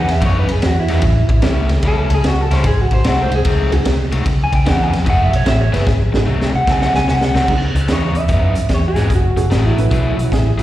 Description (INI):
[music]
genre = electric blues shuffle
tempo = 149 BPM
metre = 4/4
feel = swing 66% on 8ths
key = C# minor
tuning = A4 = 440 Hz
[part]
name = electric guitar through a small old amp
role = melody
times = 0.0-10.6 s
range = E4 to G#5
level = -20 LUFS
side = equal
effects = plate reverb, slapback echo
[part]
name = honky-tonk upright piano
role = accompaniment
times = 0.0-10.3 s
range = A3 to B4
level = -26 LUFS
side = right 6 dB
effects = plate reverb, slapback echo
[part]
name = crunchy overdriven guitar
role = riff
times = 0.0-10.6 s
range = G#2 to G#4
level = -24 LUFS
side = left 4 dB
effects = slapback echo
[part]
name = vintage muted fingered electric bass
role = bass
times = 0.1-10.6 s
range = F#1 to G#2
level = -16 LUFS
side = equal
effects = none
[part]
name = raw garage drum kit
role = drums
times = 0.1-10.6 s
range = crash cymbal, hi-hat, kick drum, ride cymbal, snare drum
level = -18 LUFS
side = equal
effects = none
[part]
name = clear upright piano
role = second line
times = 10.3-10.6 s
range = F#4 to G#4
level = -25 LUFS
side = right 4 dB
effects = none
[sound]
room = light reverb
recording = live gig heard through the venue's PA, recital hall reverb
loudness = -13 LUFS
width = side -14 dB against mid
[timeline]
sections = 0.0-7.5 A section; 7.5-10.6 B section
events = clean electric guitar solo 0.0-7.5; drum fill 5.9-7.5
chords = 0.0 C#m9; 1.0 A7; 2.6 G#7b9; 4.3 C#m9; 5.1 F#m9; 5.9 G#7b9; 7.5 C#m9; 9.1 F#m9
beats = 0.22 0.63 | 1.03 1.44 1.84 2.24 | 2.65 3.05 3.45 3.85 | 4.26 4.66 5.07 5.47 | 5.87 6.28 6.68 7.08 | 7.49 7.89 8.30 8.70 | 9.11 9.51 9.92 10.32